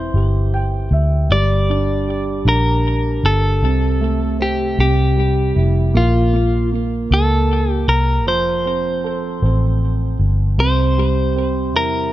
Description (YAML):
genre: six-eight pop ballad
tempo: 52 BPM (dotted quarters)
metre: 6/8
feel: straight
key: unclear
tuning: A4 = 438 Hz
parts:
  - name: clean electric guitar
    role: melody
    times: 0.0-12.1 s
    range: F4 to D5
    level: -20 LUFS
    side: left 1 dB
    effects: harmonic tremolo, ping-pong delay
  - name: warm baby grand piano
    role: accompaniment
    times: 0.0-12.1 s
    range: C3 to G5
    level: -22 LUFS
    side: right 4 dB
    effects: none
  - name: vintage muted fingered electric bass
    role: bass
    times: 0.0-12.1 s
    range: E1 to E2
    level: -17 LUFS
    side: equal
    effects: none
room: light reverb, small room ambience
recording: none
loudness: -15 LUFS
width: side -14 dB against mid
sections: 0.0-12.1 A section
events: grand piano fill 0.1-1.3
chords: 0.0 C/E; 1.3 Gm; 3.6 Am7/C; 4.8 C; 5.9 Bbmadd9; 8.3 F; 10.6 C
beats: 0.14 | 1.30 2.46 | 3.62 4.78 | 5.94 7.11 | 8.27 9.43 | 10.59 11.75